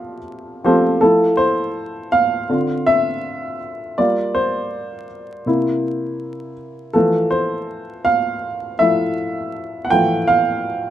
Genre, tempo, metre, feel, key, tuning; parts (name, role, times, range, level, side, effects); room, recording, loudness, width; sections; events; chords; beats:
R&B; 81 BPM; 4/4; swing 60% on 16ths; F major; A4 = 441 Hz
dark baby grand piano; solo; 0.0-10.9 s; C3 to G5; -17 LUFS; equal
moderate stone room reverb, RT60 1.1 s; band playing live in one room, vinyl crackle; -16 LUFS; side -12 dB against mid
0.0-1.0 A section; 1.0-10.9 B section
grand piano solo 1.0-10.9
0.0 Fmaj7; 2.5 Dm7; 4.0 Gm7; 5.5 C7; 6.9 Fmaj7
0.27 | 1.00 1.75 2.49 3.23 | 3.97 4.71 5.45 6.19 | 6.93 7.67 8.41 9.15 | 9.89 10.63